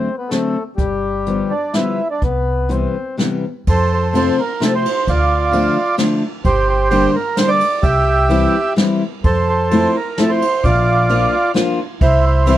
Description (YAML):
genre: musette waltz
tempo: 129 BPM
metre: 3/4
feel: rubato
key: C major, F major from 3.7 s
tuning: A4 = 441 Hz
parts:
  - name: mellow accordion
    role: melody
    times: 0.0-12.6 s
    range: G3 to E5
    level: -17 LUFS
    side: right 2 dB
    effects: none
  - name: fingerpicked steel-string acoustic guitar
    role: accompaniment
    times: 0.0-12.6 s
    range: C3 to F4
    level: -17 LUFS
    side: left 3 dB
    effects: none
  - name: jazz brush drum kit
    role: drums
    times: 0.3-12.6 s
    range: hi-hat, kick drum, ride cymbal, snare drum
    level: -22 LUFS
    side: right 1 dB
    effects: none
  - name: upright bass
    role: bass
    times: 0.8-12.6 s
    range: G1 to F2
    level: -18 LUFS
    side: equal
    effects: none
room: studio reverb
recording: none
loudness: -14 LUFS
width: side -13 dB against mid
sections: 0.0-3.7 A section; 3.7-12.6 B section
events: none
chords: 0.0 D7/A; 0.8 G7; 2.2 Cmaj7; 3.7 F; 5.1 Dm; 6.5 Gm; 7.8 C; 9.2 Fmaj7; 10.6 Bb; 12.0 C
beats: 0.30 | 0.78 1.26 1.74 | 2.22 2.70 3.19 | 3.67 4.15 4.62 | 5.08 5.53 5.99 | 6.45 6.91 7.37 | 7.84 8.30 8.78 | 9.25 9.71 10.18 | 10.64 11.10 11.55 | 12.01 12.47